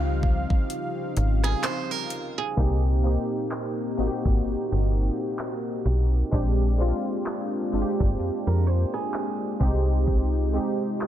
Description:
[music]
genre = contemporary R&B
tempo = 64 BPM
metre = 4/4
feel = swing 58% on 16ths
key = unclear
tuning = A4 = 440 Hz
[part]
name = warm analog keys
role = accompaniment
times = 0.0-11.1 s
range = F3 to F5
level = -28 LUFS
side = equal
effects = chorus
[part]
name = chorused pulse-width pad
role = sustained chords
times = 0.0-11.1 s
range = Bb2 to C5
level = -34 LUFS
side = left 1 dB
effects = none
[part]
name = slap-like FM bass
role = bass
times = 0.0-10.6 s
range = G1 to F2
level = -23 LUFS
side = equal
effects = none
[part]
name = smooth R&B drum kit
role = drums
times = 0.2-11.1 s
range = handclaps, hi-hat, kick drum, rim click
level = -27 LUFS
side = equal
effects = none
[part]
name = picked swing-style acoustic guitar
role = arpeggios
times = 1.4-2.8, 8.5-9.6 s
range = Ab4 to C5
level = -32 LUFS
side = right 8 dB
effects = none
[sound]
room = little or no reverb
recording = low-pass filter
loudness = -23 LUFS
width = side -11 dB against mid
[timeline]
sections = 0.0-2.6 A section; 2.6-11.1 B section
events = synth keys solo 0.0-2.6; break 0.7-2.6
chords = 0.0 Dbmaj9#11; 2.6 Cm7; 6.3 Bb13; 9.6 Fm9/C

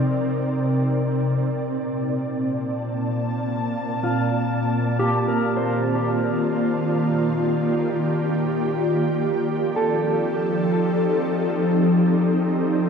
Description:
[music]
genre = ambient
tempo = free time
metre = none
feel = none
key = unclear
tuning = A4 = 441 Hz
[part]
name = ethereal airy pad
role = sustained chords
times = 0.0-12.9 s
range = Bb2 to A5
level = -20 LUFS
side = equal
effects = ensemble chorus, built-in reverb
[part]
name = mellow electric guitar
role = arpeggios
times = 4.0-11.4 s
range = F4 to C5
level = -27 LUFS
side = right 1 dB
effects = harmonic tremolo, ping-pong delay
[sound]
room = wet huge ambient reverb, RT60 7.7 s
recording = none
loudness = -20 LUFS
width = side -6 dB against mid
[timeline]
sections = 0.0-12.9 A section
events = fade-in on clean electric guitar 0.0-12.9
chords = 0.0 Cm9; 1.2 Bbmaj7; 5.0 Ebmaj9; 8.8 F13

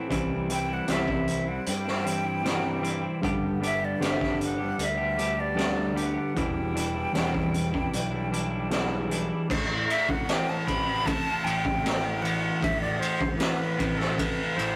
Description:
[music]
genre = psychedelic rock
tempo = 77 BPM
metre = 4/4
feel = straight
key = A dorian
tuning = A4 = 439 Hz
[part]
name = breathy bright jazz flute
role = melody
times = 0.0-14.8 s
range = A4 to B5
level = -33 LUFS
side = equal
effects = none
[part]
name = semi-hollow electric guitar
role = riff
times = 0.0-14.8 s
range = E2 to G4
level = -32 LUFS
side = equal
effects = tremolo
[part]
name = fuzz picked electric bass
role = bass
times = 0.1-14.8 s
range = E1 to G2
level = -36 LUFS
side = equal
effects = overdrive
[part]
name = raw garage drum kit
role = drums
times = 0.1-14.8 s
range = crash cymbal, hi-hat, kick drum, ride cymbal, snare drum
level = -31 LUFS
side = equal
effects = none
[sound]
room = moderate studio reverb, RT60 0.6 s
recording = rough rehearsal-room recording, warm saturation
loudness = -27 LUFS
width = mono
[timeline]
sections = 0.0-9.5 A section; 9.5-14.8 B section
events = flute solo 9.5-14.8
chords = 0.1 C; 3.2 G; 6.4 Em7; 9.5 Am

